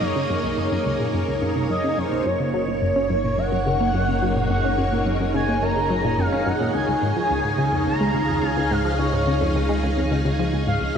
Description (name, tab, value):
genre	ambient, sequencer-driven space music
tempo	107 BPM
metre	4/4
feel	straight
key	unclear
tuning	A4 = 440 Hz
part	expressive synth lead	melody	0.0-11.0 s	C5 to Bb5	-25 LUFS	equal	analog chorus, ping-pong delay
part	string machine, full ensemble	sustained chords	0.0-11.0 s	Gb2 to F5	-24 LUFS	equal	ensemble chorus
part	tight sequenced synth	riff	0.0-11.0 s	C2 to Db4	-24 LUFS	equal	chorus, ping-pong delay
part	bubbling stepped-filter texture	texture	0.0-11.0 s	Bb3 to Bb6	-39 LUFS	equal	chorus, built-in reverb
part	fat analog bass	bass	2.3-11.0 s	Gb1 to Db2	-27 LUFS	equal	none
room	wet lush hall reverb, RT60 3.1 s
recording	dreamy mix soaked in reverb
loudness	-19 LUFS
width	side -7 dB against mid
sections	0.0-2.3 A section; 2.3-11.0 B section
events	none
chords	0.0 Gb6; 2.3 Gb; 6.7 Db